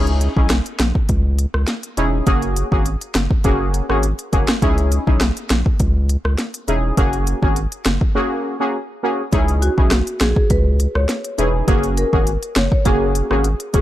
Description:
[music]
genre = dancehall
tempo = 102 BPM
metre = 4/4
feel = straight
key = C# dorian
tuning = A4 = 440 Hz
[part]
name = synth brass stab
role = accompaniment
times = 0.0-13.8 s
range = A#3 to G#4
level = -20 LUFS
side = equal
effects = chorus
[part]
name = saturated sub bass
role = bass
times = 0.0-13.8 s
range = E1 to C#2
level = -19 LUFS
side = equal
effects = none
[part]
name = afro-pop drum kit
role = drums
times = 0.1-13.8 s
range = hi-hat, kick drum, rim click, snare drum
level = -18 LUFS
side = equal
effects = none
[part]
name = marimba with medium mallets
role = melody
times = 9.6-13.8 s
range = F#4 to C#5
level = -23 LUFS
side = equal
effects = analog delay
[sound]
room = little or no reverb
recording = dry, gritty hardware recording, lossy compression artefacts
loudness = -16 LUFS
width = side -14 dB against mid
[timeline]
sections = 0.0-9.3 A section; 9.3-13.8 B section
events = break 8.2-9.3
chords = 0.0 C#madd9; 2.3 F#add9; 4.6 C#madd9; 7.0 F#add9; 9.3 C#madd9; 11.7 F#add9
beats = 0.50 1.09 1.68 | 2.27 2.86 3.44 4.03 | 4.62 5.21 5.80 6.39 | 6.97 7.56 8.15 8.74 | 9.33 9.92 10.50 11.09 | 11.68 12.27 12.86 13.45

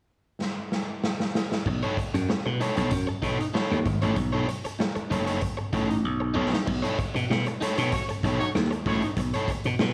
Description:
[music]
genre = funk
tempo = 96 BPM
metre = 4/4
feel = straight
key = B mixolydian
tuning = A4 = 438 Hz
[part]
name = raw garage drum kit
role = drums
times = 0.4-9.9 s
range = crash cymbal, hi-hat, kick drum, snare drum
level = -31 LUFS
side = equal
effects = none
[part]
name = crunchy overdriven guitar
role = accompaniment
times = 1.7-9.8 s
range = D#4 to C#5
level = -32 LUFS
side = equal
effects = plate reverb
[part]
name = slap bass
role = bass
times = 1.7-9.9 s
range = F#1 to B2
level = -29 LUFS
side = equal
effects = none
[part]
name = clear horn section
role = second line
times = 7.9-9.1 s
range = A3 to C#5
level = -35 LUFS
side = equal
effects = slapback echo, plate reverb
[sound]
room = light reverb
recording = small room reverb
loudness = -27 LUFS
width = mono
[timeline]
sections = 0.0-1.7 A section; 1.7-6.7 B section; 6.7-9.9 C section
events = drum fill 0.4-1.7, 6.0-6.7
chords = 0.0 N.C.; 1.7 B9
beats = 0.40 1.03 | 1.66 2.29 2.92 3.54 | 4.17 4.80 5.42 6.05 | 6.67 7.30 7.92 8.54 | 9.17 9.79

